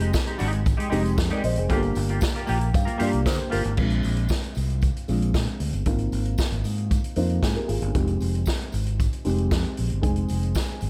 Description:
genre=disco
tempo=115 BPM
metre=4/4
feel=straight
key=F dorian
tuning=A4 = 439 Hz
part: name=dark grand piano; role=accompaniment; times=0.0-10.9 s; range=Ab3 to Ab5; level=-31 LUFS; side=equal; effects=low-pass filter
part: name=semi-hollow electric guitar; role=accompaniment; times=0.0-3.7 s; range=Ab3 to Bb4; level=-32 LUFS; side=equal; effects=analog chorus
part: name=fingered electric bass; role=bass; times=0.0-10.9 s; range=F1 to Bb2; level=-28 LUFS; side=equal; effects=none
part: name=vintage drum kit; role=drums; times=0.0-10.9 s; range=crash cymbal, hi-hat, kick drum, snare drum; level=-28 LUFS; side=equal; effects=none
part: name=tambourine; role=percussion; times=0.1-10.9 s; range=none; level=-47 LUFS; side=equal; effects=none
room=light reverb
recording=none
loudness=-24 LUFS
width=mono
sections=0.0-3.8 A section; 3.8-10.9 B section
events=grand piano fill 2.2-3.8, 6.9-7.9; filter sweep on grand piano 3.8-10.9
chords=0.0 Fm9; 1.7 Gm7; 5.9 Ab6; 7.9 Fm7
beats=0.14 0.67 1.19 | 1.70 2.22 2.74 3.26 | 3.78 4.30 4.83 5.34 | 5.87 6.39 6.91 7.43 | 7.95 8.47 8.99 9.51 | 10.03 10.55

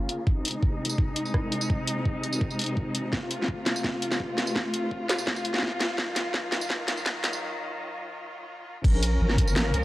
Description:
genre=half-time drum and bass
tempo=168 BPM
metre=4/4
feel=half-time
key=Bb minor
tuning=A4 = 440 Hz
part: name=warm studio cello section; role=sustained chords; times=0.0-9.8 s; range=C3 to Bb4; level=-30 LUFS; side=left 1 dB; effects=sidechain pumping, low-pass filter
part: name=deep soft wobble bass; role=bass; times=0.0-9.8 s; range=Eb1 to Db2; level=-32 LUFS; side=equal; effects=chorus, high-pass filter
part: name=drum and bass drum kit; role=drums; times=0.1-9.8 s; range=crash cymbal, hi-hat, rim click, snare drum, tambourine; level=-28 LUFS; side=equal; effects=none
part: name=electronic kick drum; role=drums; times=0.3-9.5 s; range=none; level=-26 LUFS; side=equal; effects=none
room=light reverb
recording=dry, gritty hardware recording, cassette tape, high-pass filter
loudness=-25 LUFS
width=side -17 dB against mid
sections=0.0-8.8 A section; 8.8-9.8 B section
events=build-up 0.0-8.8; filter sweep on cello section 0.0-8.8; filter sweep 0.0-8.8; drum fill 3.1-7.4; break 7.4-8.8; drop 8.8-9.8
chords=0.3 Ab; 3.1 F; 6.0 Ebmadd9; 8.8 Bbm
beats=| 0.27 0.63 0.99 1.34 | 1.70 2.06 2.42 2.77 | 3.13 3.49 3.84 4.20 | 4.56 4.92 5.27 5.63 | 5.99 6.34 6.70 7.06 | 7.42 7.77 8.13 8.49 | 8.84 9.20 9.56

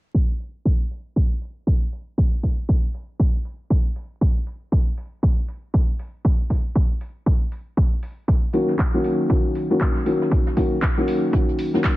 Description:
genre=deep house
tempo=118 BPM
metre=4/4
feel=swing 61% on 16ths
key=Eb minor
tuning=A4 = 440 Hz
part: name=electronic kick drum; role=drums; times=0.1-12.0 s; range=none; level=-19 LUFS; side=equal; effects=none
part: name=punchy analog drum machine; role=drums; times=0.4-12.0 s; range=handclaps, hi-hat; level=-31 LUFS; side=equal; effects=low-pass filter on hats, low-pass filter on snare, low-pass filter on room
part: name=soft brush drum kit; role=drums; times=8.3-12.0 s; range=hi-hat, snare drum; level=-39 LUFS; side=right 2 dB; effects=high-pass filter on hats, high-pass filter on snare, high-pass filter on room
part: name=felt-muted upright piano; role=stabs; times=8.5-12.0 s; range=Eb3 to Gb4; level=-20 LUFS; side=left 1 dB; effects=sidechain pumping, dub echo
room=small room ambience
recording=vinyl crackle, low-pass filter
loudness=-19 LUFS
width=side -17 dB against mid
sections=0.1-12.0 A section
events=filter sweep on drum 0.1-12.0; filter sweep 0.1-12.0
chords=0.1 N.C.; 8.3 Ebm7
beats=| 0.14 0.65 1.16 1.67 | 2.18 2.69 3.20 3.70 | 4.21 4.72 5.23 5.74 | 6.25 6.75 7.26 7.77 | 8.28 8.79 9.30 9.81 | 10.31 10.82 11.33 11.84

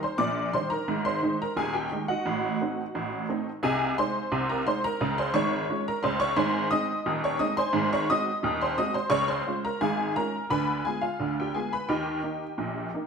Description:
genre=ragtime piano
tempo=87 BPM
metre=2/4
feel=straight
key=Ab major from 3.6 s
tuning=A4 = 441 Hz
part: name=honky-tonk upright piano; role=solo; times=0.0-13.1 s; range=Eb1 to Eb6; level=-25 LUFS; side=equal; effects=none
room=wet echo chamber reverb, RT60 1.6 s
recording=heard from further back in the room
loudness=-25 LUFS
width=side -6 dB against mid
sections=0.0-13.1 A section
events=none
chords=0.0 Eb; 0.9 Ab; 2.3 Adim7; 3.6 Ab/C; 5.0 Db; 6.4 Ab; 7.7 Ab7; 9.1 Db; 10.5 Ddim7; 11.9 Eb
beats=0.20 | 0.89 1.57 | 2.26 2.95 | 3.63 4.32 | 5.00 5.69 | 6.37 7.06 | 7.75 8.44 | 9.12 9.81 | 10.50 11.19 | 11.88 12.58

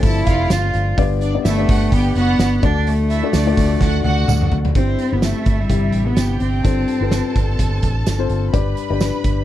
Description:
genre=piano-driven pop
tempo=127 BPM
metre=4/4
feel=swing 56% on 16ths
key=G major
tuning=A4 = 439 Hz
part: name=warm symphonic violin section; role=second line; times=0.0-9.4 s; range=D4 to B5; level=-27 LUFS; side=right 3 dB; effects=none
part: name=felt-muted upright piano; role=accompaniment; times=0.0-9.4 s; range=G2 to E5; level=-23 LUFS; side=left 12 dB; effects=none
part: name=vintage muted fingered electric bass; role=bass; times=0.0-9.4 s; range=F1 to D2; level=-20 LUFS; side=right 1 dB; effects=none
part: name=loose indie drum kit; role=drums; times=0.0-9.4 s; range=hi-hat, kick drum, snare drum, toms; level=-20 LUFS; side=right 1 dB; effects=none
part: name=rich cello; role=melody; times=0.1-7.8 s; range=G3 to F4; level=-21 LUFS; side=right 1 dB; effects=none
part: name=tambourine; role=percussion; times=0.5-9.1 s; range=none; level=-34 LUFS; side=right 10 dB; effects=none
room=little or no reverb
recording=none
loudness=-15 LUFS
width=side -12 dB against mid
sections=0.0-4.8 A section; 4.8-9.4 B section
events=drum fill 3.8-4.8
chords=0.0 F; 1.0 G; 2.6 D; 4.8 C/G; 6.6 F/G; 8.5 G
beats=0.03 0.50 | 0.98 1.45 1.92 2.39 | 2.87 3.34 3.81 4.28 | 4.75 5.23 5.70 6.17 | 6.64 7.12 7.59 8.06 | 8.53 9.01

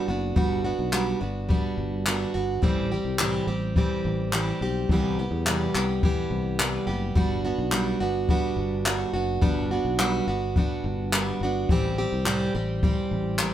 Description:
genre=acoustic pop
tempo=106 BPM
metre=4/4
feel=straight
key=unclear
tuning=A4 = 438 Hz
part: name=picked plugged-in steel-string acoustic guitar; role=accompaniment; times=0.0-13.5 s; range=A2 to G4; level=-26 LUFS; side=right 2 dB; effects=none
part: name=sustaining fretless electric bass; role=bass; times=0.1-13.5 s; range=F#1 to E2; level=-29 LUFS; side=left 1 dB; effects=none
part: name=jazz brush drum kit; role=drums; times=0.4-13.5 s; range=handclaps, kick drum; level=-25 LUFS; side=left 1 dB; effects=none
room=light reverb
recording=band playing live in one room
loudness=-23 LUFS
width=side -11 dB against mid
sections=0.0-13.5 A section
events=none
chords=0.0 Gmaj7; 2.6 Am7; 4.9 Cmaj7; 7.2 Gmaj7; 11.7 Am7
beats=| 0.36 0.92 1.49 2.06 | 2.62 3.19 3.76 4.33 | 4.89 5.46 6.03 6.59 | 7.16 7.73 8.29 8.86 | 9.43 9.99 10.56 11.13 | 11.69 12.26 12.82 13.39

